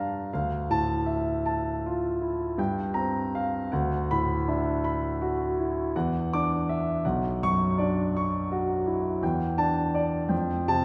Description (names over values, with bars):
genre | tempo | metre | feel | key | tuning
classical, impressionist solo piano | 54 BPM (dotted quarters) | 9/8 | rubato | unclear | A4 = 440 Hz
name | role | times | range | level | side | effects
warm concert grand piano | solo | 0.0-10.8 s | B1 to D6 | -27 LUFS | equal | none
room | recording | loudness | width
wet scoring stage reverb, RT60 1.9 s | recorded in a church or concert hall | -27 LUFS | mono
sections
0.0-10.8 A section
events
none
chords
0.3 Dmadd9; 2.6 Gm7; 3.7 D69; 5.9 Esus2; 7.0 Bmadd9; 9.2 Em7; 10.3 Fadd9